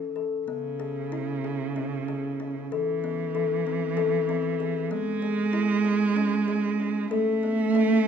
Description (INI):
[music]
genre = contemporary instrumental, chamber music in an uneven meter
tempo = 190 BPM (eighths)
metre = 7/8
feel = straight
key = unclear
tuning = A4 = 440 Hz
[part]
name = dark cello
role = second line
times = 0.0-8.1 s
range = C#3 to A3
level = -26 LUFS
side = right 4 dB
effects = none
[part]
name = kalimba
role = arpeggios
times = 0.0-8.0 s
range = B3 to A4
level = -28 LUFS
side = left 7 dB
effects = none
[sound]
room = moderate concert hall reverb, RT60 1.7 s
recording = minimal, uncompressed stereo recording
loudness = -24 LUFS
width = side -7 dB against mid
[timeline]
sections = 0.5-8.1 A section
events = none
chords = 0.5 C#m7; 2.7 Amadd9; 4.9 C#m7; 7.1 Asus2